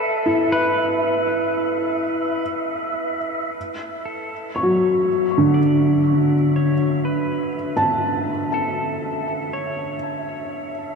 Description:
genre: ambient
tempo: 60 BPM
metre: 3/4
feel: straight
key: B minor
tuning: A4 = 440 Hz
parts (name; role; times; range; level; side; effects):
- pedal steel guitar; melody; 0.0-11.0 s; A4 to D5; -27 LUFS; equal; ping-pong delay
- wind-like tuned noise texture; texture; 0.0-11.0 s; E5; -28 LUFS; equal; built-in reverb
- felt-muted upright piano; arpeggios; 0.3-11.0 s; D3 to C#6; -20 LUFS; equal; ping-pong delay
room: wet huge ambient reverb, RT60 8.0 s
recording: in a vast, echoing space, cassette tape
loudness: -19 LUFS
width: side -5 dB against mid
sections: 0.0-3.6 A section; 3.6-11.0 B section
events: fade-in on synth texture 3.6-11.0; fade-in on pedal steel guitar 3.6-11.0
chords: 0.0 N.C.; 3.6 Bm9 (rootless)

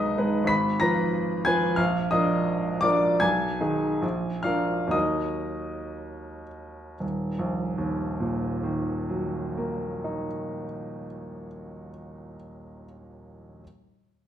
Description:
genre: classical, romantic character piece for solo piano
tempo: 54-95 BPM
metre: 2/4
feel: rubato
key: Eb minor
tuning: A4 = 441 Hz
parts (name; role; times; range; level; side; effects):
- clear baby grand piano; solo; 0.0-13.6 s; Eb1 to Cb7; -25 LUFS; equal; none
room: wet recital hall reverb, RT60 1.3 s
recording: dark, warm production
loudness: -24 LUFS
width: side -10 dB against mid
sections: 0.0-7.0 A section; 7.0-11.4 B section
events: slowing down 2.5-7.0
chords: 0.5 Fdim/Ab; 1.8 Bb; 3.2 Abm/Cb; 4.0 Bb7; 4.9 Ebm

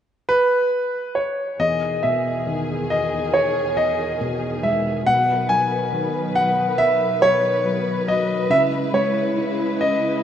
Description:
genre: pop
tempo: 70 BPM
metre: 4/4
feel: straight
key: E major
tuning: A4 = 440 Hz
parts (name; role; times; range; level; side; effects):
- bright concert grand piano; melody; 0.3-10.2 s; B4 to G#5; -19 LUFS; equal; none
- felt-muted upright piano; accompaniment; 1.6-10.2 s; E2 to F#4; -27 LUFS; left 2 dB; none
- warm studio string section; sustained chords; 1.6-10.2 s; E2 to B4; -25 LUFS; equal; none
room: wet lush hall reverb, RT60 2.4 s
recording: rough home demo mix, nothing above 10.7 kHz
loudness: -18 LUFS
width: side -9 dB against mid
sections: 0.0-1.6 A section; 1.6-10.2 B section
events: none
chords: 0.0 N.C.; 1.6 Emaj7; 5.1 B; 8.5 C#m7

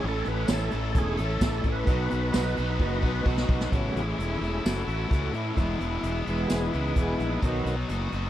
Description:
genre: classic rock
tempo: 130 BPM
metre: 4/4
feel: straight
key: unclear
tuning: A4 = 439 Hz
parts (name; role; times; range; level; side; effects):
- overdriven tonewheel organ; melody; 0.0-3.3 s; G#4 to B4; -34 LUFS; equal; slow rotary speaker, chorus vibrato, tape echo
- bright concert grand piano; accompaniment; 0.0-3.6 s; B3 to E5; -36 LUFS; right 14 dB; none
- bright tonewheel organ; sustained chords; 0.0-7.8 s; C#3 to C#5; -33 LUFS; equal; slow rotary speaker, overdrive
- raw garage guitar; riff; 0.0-8.3 s; E2 to A4; -32 LUFS; left 2 dB; overdrive
- fuzz fingered electric bass; bass; 0.0-8.3 s; E1 to A2; -29 LUFS; equal; overdrive
- vintage brush drum kit; drums; 0.2-8.2 s; hi-hat, kick drum, snare drum, tambourine; -27 LUFS; equal; none
room: little or no reverb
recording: none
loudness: -24 LUFS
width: side -12 dB against mid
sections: 0.0-3.7 A section; 3.7-8.3 B section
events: drum fill 2.8-3.7; half time 3.7-8.3; tonewheel organ solo 3.7-8.3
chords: 0.0 A; 1.9 B; 3.7 A6; 5.6 E; 7.4 B

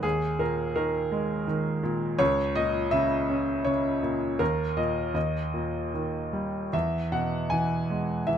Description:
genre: classical, lyrical solo piano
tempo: 75-84 BPM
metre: 3/4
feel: rubato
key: unclear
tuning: A4 = 441 Hz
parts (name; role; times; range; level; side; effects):
- clear grand piano; solo; 0.0-8.4 s; C#2 to G#5; -25 LUFS; equal; none
room: light reverb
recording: close, detailed microphones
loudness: -25 LUFS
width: side -8 dB against mid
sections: 0.0-8.4 A section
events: none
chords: 0.0 D#sus4; 2.2 A#dim/C#; 4.4 D#5; 5.2 D#; 6.7 E

